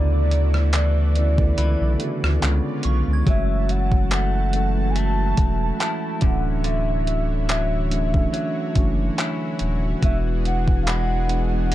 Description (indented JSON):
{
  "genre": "contemporary R&B",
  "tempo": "71 BPM",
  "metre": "4/4",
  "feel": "swing 54% on 16ths",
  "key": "unclear",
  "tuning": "A4 = 440 Hz",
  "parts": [
    { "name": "warm velvety synth lead", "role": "melody", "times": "0.0-11.7 s", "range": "D5 to A5", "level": "-28 LUFS", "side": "equal", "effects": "chorus, tape echo" },
    { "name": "mellow tine electric piano", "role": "accompaniment", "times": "0.0-11.7 s", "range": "C#3 to A4", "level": "-27 LUFS", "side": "right 4 dB", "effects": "phaser" },
    { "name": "lush unison pad", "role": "sustained chords", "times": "0.0-11.7 s", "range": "D3 to A5", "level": "-34 LUFS", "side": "left 1 dB", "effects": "chorus" },
    { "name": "direct-recorded clean electric guitar", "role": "arpeggios", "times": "0.0-11.7 s", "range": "C#3 to E4", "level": "-32 LUFS", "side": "left 6 dB", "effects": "tape echo" },
    { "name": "saturated sub bass", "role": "bass", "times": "0.0-11.7 s", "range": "D1 to D2", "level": "-21 LUFS", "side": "equal", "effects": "none" },
    { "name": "soft synth bell", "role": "texture", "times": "0.0-3.9, 10.9-11.7 s", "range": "Bb5 to G#6", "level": "-39 LUFS", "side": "right 2 dB", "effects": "chorus, phaser, tape echo" },
    { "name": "crisp 8-bit digital drum machine", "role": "drums", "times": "0.3-11.7 s", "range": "handclaps, hi-hat, kick drum, rim click", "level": "-22 LUFS", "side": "equal", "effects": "overdrive, vintage 12-bit sampler grit" }
  ],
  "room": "little or no reverb",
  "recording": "dark, warm production",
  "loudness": "-19 LUFS",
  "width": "side -14 dB against mid",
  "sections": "0.0-11.7 A section",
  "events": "none",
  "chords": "0.0 Bm11/D; 2.4 C#7b9; 3.3 F#m9; 6.2 Dmaj9; 10.0 E9",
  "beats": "0.73 1.57 2.42 | 3.27 4.11 4.96 5.80 | 6.64 7.49 8.34 9.18 | 10.03 10.87 11.72"
}